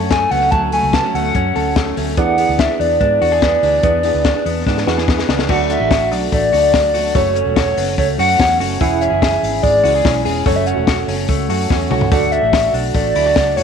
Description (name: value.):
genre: jangly indie pop.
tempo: 145 BPM.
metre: 4/4.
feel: straight.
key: unclear.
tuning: A4 = 441 Hz.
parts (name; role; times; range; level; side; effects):
fingerpicked plugged-in steel-string acoustic guitar; accompaniment; 0.0-13.6 s; F#2 to G#4; -24 LUFS; right 14 dB; none.
reed electric piano; accompaniment; 0.0-13.6 s; D4 to E5; -25 LUFS; right 13 dB; fast tremolo.
direct-recorded clean electric guitar; arpeggios; 0.0-13.6 s; E3 to A4; -22 LUFS; left 10 dB; spring reverb, slapback echo.
vintage muted fingered electric bass; bass; 0.0-13.6 s; E1 to G#2; -22 LUFS; right 2 dB; none.
hollow clarinet-like synth lead; melody; 0.1-13.6 s; C#5 to A5; -16 LUFS; equal; chorus, phaser, slapback echo.
compact cocktail drum kit; drums; 0.1-13.6 s; crash cymbal, hi-hat, kick drum, snare drum, toms; -19 LUFS; left 2 dB; none.
room: moderate echo chamber reverb, RT60 2.1 s.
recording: 1960s-style stereo with parts hard left and right.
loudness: -13 LUFS.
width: side -7 dB against mid.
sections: 0.0-5.5 A section; 5.5-13.6 B section.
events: drum fill 4.7-5.5, 11.7-12.1.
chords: 0.0 Dmaj7; 2.2 E7; 5.5 D; 7.2 F#m; 8.8 C#m/E; 10.5 F#m; 12.1 D.